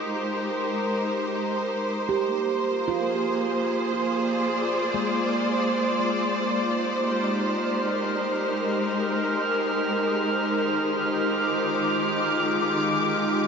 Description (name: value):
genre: ambient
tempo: free time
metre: none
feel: none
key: Ab lydian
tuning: A4 = 440 Hz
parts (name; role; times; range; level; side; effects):
- rich symphonic string section; sustained chords; 0.0-13.5 s; Eb3 to D6; -24 LUFS; equal; none
- handpan; arpeggios; 0.0-9.9 s; Ab3 to Eb5; -31 LUFS; right 4 dB; tape echo
- organ-like drone; drone; 7.9-13.5 s; Ab3 to Eb4; -30 LUFS; left 1 dB; ensemble chorus, built-in reverb
- drifting glass-harmonics texture; texture; 7.2-13.5 s; F6; -30 LUFS; right 2 dB; chorus, built-in reverb
room: wet huge ambient reverb, RT60 8.5 s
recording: cassette tape, nothing above 7.6 kHz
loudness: -23 LUFS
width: side -6 dB against mid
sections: 0.0-13.5 A section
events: fade-out on handpan 0.0-13.5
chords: 0.0 Abmaj7; 10.8 Ebmaj9